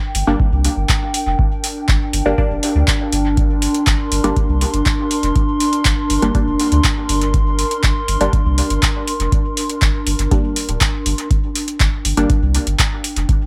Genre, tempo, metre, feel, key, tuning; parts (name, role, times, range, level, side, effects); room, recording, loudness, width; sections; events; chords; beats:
dub techno; 121 BPM; 4/4; straight; G minor; A4 = 440 Hz
warbly tape-like pad; sustained chords; 0.1-13.5 s; D4 to C6; -24 LUFS; equal; chorus, built-in reverb, sidechain pumping
soft dub sub bass; bass; 0.1-13.2 s; D1 to D2; -21 LUFS; equal; sidechain pumping
booming analog drum machine; drums; 0.1-13.4 s; handclaps, hi-hat; -23 LUFS; equal; dub echo
filtered dub chord stab; stabs; 0.3-13.5 s; G3 to D4; -24 LUFS; equal; phaser, sidechain pumping, dub echo
electronic kick drum; drums; 0.4-13.4 s; -20 LUFS; equal
digital ambience; -17 LUFS; mono
0.0-13.5 A section
0.0 Gm
0.40 0.89 | 1.39 1.89 2.38 2.88 | 3.37 3.87 4.36 4.86 | 5.36 5.85 6.35 6.84 | 7.34 7.83 8.33 8.83 | 9.32 9.82 10.31 10.81 | 11.31 11.80 12.30 12.79 | 13.29